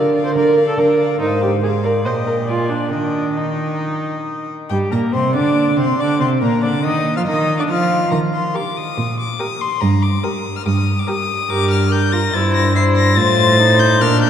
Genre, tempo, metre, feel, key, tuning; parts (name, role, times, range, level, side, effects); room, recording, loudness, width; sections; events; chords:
quick classical-period movement for string quartet; 142 BPM; 4/4; rubato; Eb major; A4 = 438 Hz
rich violin; melody; 0.0-14.3 s; F5 to C7; -22 LUFS; left 7 dB
dark violin; second line; 0.0-14.3 s; G4 to F5; -22 LUFS; left 2 dB
rich viola; accompaniment; 0.0-14.3 s; G3 to C5; -20 LUFS; right 1 dB
rich cello; bass; 0.0-14.3 s; G2 to F3; -18 LUFS; right 2 dB
wet church reverb, RT60 3.6 s; dark, warm production; -14 LUFS; side -9 dB against mid
0.0-4.7 A section; 4.7-14.3 B section
0.0 Bb/D; 1.2 Fm/Ab; 2.1 Eb/Bb; 2.5 Bb7; 2.9 Eb; 4.7 Gmadd11; 6.4 Bb; 8.1 Eb; 9.8 Eb/G; 11.5 Gm; 12.3 C/G; 13.2 F/A